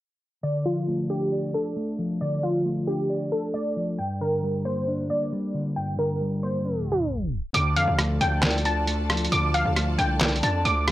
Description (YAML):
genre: hip hop, trap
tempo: 135 BPM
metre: 4/4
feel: half-time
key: D minor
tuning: A4 = 440 Hz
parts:
  - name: warbly dusty pluck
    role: melody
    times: 0.4-10.8 s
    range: F4 to D6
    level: -27 LUFS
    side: equal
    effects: chorus, low-pass filter
  - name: mellow electric guitar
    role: accompaniment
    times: 0.4-10.9 s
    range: G2 to D5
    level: -28 LUFS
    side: left 1 dB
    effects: low-pass filter
  - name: dark symphonic string section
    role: sustained chords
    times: 7.5-10.9 s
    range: F4 to A5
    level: -34 LUFS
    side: equal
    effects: none
  - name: distorted 808-style bass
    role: bass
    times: 7.5-10.9 s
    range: C2 to F2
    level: -26 LUFS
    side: equal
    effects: distortion
  - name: lo-fi sampler-style drum kit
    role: drums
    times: 7.5-10.9 s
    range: handclaps, hi-hat, rim click, snare drum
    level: -25 LUFS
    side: right 1 dB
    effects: overdrive
room: little or no reverb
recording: dry, gritty hardware recording, transformer saturation, low-pass filter, tape stop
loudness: -23 LUFS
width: side -15 dB against mid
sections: 0.4-7.5 A section; 7.5-10.9 B section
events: filter sweep 0.4-7.5; tape stop 6.7-7.5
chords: 0.4 Dm; 4.0 Gm; 7.5 Dm